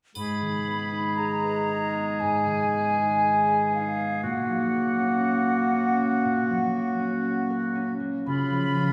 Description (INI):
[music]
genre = cinematic, emotional film score for orchestra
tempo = 60 BPM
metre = 4/4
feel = rubato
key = G# dorian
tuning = A4 = 440 Hz
[part]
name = hollow small flute group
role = second line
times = 0.2-8.9 s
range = E#5 to B5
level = -29 LUFS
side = equal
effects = none
[part]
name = warm clarinet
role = second line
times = 0.2-8.9 s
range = G#3 to C#4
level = -30 LUFS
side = equal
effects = none
[part]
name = warm oboe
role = second line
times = 0.2-8.9 s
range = E#4 to G#4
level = -34 LUFS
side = equal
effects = none
[part]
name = concert harp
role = arpeggios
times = 0.2-8.9 s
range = G#2 to B4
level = -32 LUFS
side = equal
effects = none
[part]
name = triangle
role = percussion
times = 0.2-2.2 s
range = none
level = -46 LUFS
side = equal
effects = none
[sound]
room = wet scoring stage reverb, RT60 2.0 s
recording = heard from further back in the room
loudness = -25 LUFS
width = mono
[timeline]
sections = 0.2-8.9 A section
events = none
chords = 0.2 G#m; 4.2 F#/A#; 8.2 C#